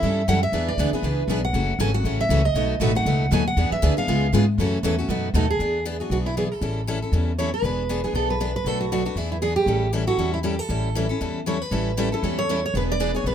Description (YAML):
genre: acoustic string swing (jazz manouche)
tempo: 236 BPM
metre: 4/4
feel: swing 57% on 8ths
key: E mixolydian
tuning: A4 = 441 Hz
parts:
  - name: picked steel-string acoustic guitar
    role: melody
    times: 0.0-13.3 s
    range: E4 to G#5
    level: -25 LUFS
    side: right 2 dB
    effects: none
  - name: picked steel-string acoustic guitar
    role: accompaniment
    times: 0.0-13.3 s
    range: B2 to A4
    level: -27 LUFS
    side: left 4 dB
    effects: none
  - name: picked steel-string acoustic guitar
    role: accompaniment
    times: 0.0-5.5, 11.7-13.3 s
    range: B2 to B4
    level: -28 LUFS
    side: right 6 dB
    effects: none
  - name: upright bass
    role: bass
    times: 0.0-13.3 s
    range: E1 to G#2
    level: -24 LUFS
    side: equal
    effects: none
room: light reverb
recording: minimal, uncompressed stereo recording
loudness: -20 LUFS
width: side -9 dB against mid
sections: 0.0-5.6 A section; 5.6-13.3 B section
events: steel-string acoustic guitar solo 0.0-5.6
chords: 0.0 A7; 0.5 E7; 1.5 F#m7; 2.6 B7; 3.6 E7; 4.1 C#7; 4.6 F#m7; 5.1 B7; 5.6 E7; 6.6 A7; 7.6 E7; 8.7 Bm7; 9.2 E7; 9.7 A7; 12.7 E7